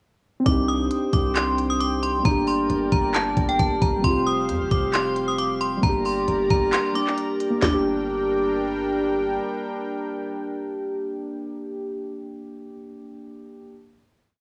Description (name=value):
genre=hip hop, trap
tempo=134 BPM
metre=4/4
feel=half-time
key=G minor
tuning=A4 = 440 Hz
part: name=muted felt-like synth keys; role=accompaniment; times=0.4-13.7 s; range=G3 to G4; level=-27 LUFS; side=equal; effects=chorus, cassette tape
part: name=metallic FM bell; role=melody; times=0.5-8.9 s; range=G5 to Eb6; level=-29 LUFS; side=equal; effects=chorus, analog delay
part: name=warm analog pad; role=sustained chords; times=0.5-12.0 s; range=G3 to C6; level=-34 LUFS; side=equal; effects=chorus, cassette tape
part: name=hard-hitting 808-style bass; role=bass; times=0.5-9.4 s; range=F1 to F2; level=-33 LUFS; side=equal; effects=none
part: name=trap drum kit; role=drums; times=0.5-7.7 s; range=handclaps, hi-hat, kick drum, snare drum, toms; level=-26 LUFS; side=equal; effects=cassette tape
room=light reverb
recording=home recording on cassette, studio ambience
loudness=-23 LUFS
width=mono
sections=0.5-7.6 hook; 7.6-11.2 final chord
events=kick muted 6.7-7.6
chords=0.5 Cmadd9; 2.3 Gm; 4.0 Fsus2; 5.8 Gm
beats=| 0.46 0.91 1.35 1.80 | 2.25 2.70 3.15 3.59 | 4.04 4.49 4.94 5.38 | 5.83 6.28 6.73 7.18 | 7.62 8.07 8.52 8.97 | 9.41 9.86 10.31 10.76